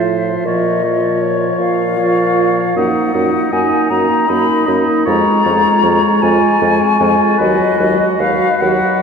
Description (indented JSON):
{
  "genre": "classical, slow romantic movement for wind quintet",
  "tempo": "52 BPM (dotted quarters)",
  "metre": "12/8",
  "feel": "rubato",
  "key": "Eb minor",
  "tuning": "A4 = 442 Hz",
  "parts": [
    { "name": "mellow hollow silver concert flute", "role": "melody", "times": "0.0-9.0 s", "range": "Db5 to Cb6", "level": "-16 LUFS", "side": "left 4 dB", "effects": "none" },
    { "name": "warm oboe", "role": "second line", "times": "0.0-9.0 s", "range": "B4 to Eb5", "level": "-21 LUFS", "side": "left 3 dB", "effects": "none" },
    { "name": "clear French horn", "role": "accompaniment", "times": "0.0-9.0 s", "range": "F3 to Bb3", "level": "-18 LUFS", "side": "equal", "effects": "none" },
    { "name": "clear clarinet", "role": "accompaniment", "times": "0.0-9.0 s", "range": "Eb4 to F#4", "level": "-19 LUFS", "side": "right 5 dB", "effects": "none" },
    { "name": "dark bassoon", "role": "bass", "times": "0.0-8.8 s", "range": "D#2 to Bb2", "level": "-18 LUFS", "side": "right 1 dB", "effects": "none" }
  ],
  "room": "wet cathedral reverb, RT60 4.1 s",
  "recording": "dark, warm production",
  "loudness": "-11 LUFS",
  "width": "side -6 dB against mid",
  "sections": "0.0-9.0 A section",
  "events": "none",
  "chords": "0.5 Bbm; 2.8 Ebm/Gb; 5.1 Db/F; 7.4 B/D#"
}